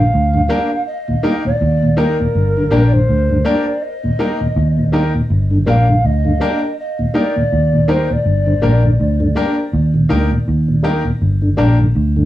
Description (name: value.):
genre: reggae.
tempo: 81 BPM.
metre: 4/4.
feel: swing 59% on 16ths.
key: G minor.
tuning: A4 = 440 Hz.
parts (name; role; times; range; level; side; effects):
mellow hollow jazz flute; melody; 0.0-9.2 s; Bb4 to F5; -21 LUFS; equal; cassette tape, tape echo.
mellow tonewheel organ; accompaniment; 0.0-12.2 s; Eb2 to Eb4; -17 LUFS; equal; chorus vibrato, slow rotary speaker, cassette tape.
vintage muted fingered electric bass; bass; 0.0-12.3 s; G1 to Eb2; -14 LUFS; equal; none.
bright grand piano; stabs; 0.5-11.8 s; Bb3 to Bb4; -19 LUFS; left 2 dB; cassette tape.
room: light reverb.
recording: home recording on cassette, small room ambience.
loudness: -13 LUFS.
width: side -14 dB against mid.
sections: 0.0-5.3 A section; 5.3-12.3 A section.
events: none.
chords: 0.0 Gm; 0.9 Eb; 2.3 Gm; 3.8 Eb; 5.3 Gm; 6.8 Eb; 8.2 Gm; 9.7 Eb; 11.2 Gm.